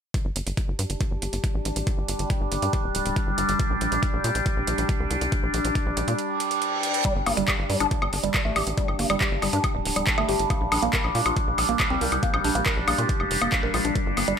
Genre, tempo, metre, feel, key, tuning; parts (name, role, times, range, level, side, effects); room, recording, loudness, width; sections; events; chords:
psychedelic trance; 139 BPM; 4/4; straight; G minor; A4 = 440 Hz
overtone-sweeping drone; sustained chords; 0.9-14.4 s; G3 to D4; -27 LUFS; equal; chorus, built-in reverb, phaser, sidechain pumping
electronic kick drum; drums; 0.1-14.0 s; -26 LUFS; equal; overdrive, studio reverb
garage drum kit; drums; 0.1-14.4 s; handclaps, hi-hat, woodblock; -28 LUFS; equal; overdrive, studio reverb
tight sequencer bass; bass; 0.2-14.3 s; D1 to Bb2; -28 LUFS; equal; tube saturation
reverse cymbal; sound effects; 6.4-7.0 s; -30 LUFS; right 7 dB
woody wave-folded pluck; riff; 7.0-14.3 s; G3 to Bb4; -28 LUFS; moving between left 2 dB and right 5 dB; chorus, auto-pan, sidechain pumping, digital delay
light reverb, digital ambience; -22 LUFS; side -7 dB against mid
0.1-7.0 A section; 7.0-14.4 B section
kick drops out 6.2-7.0; reverse cymbal 6.4-7.0
0.1 G5; 3.6 Bb6; 7.0 G5; 10.5 Bb5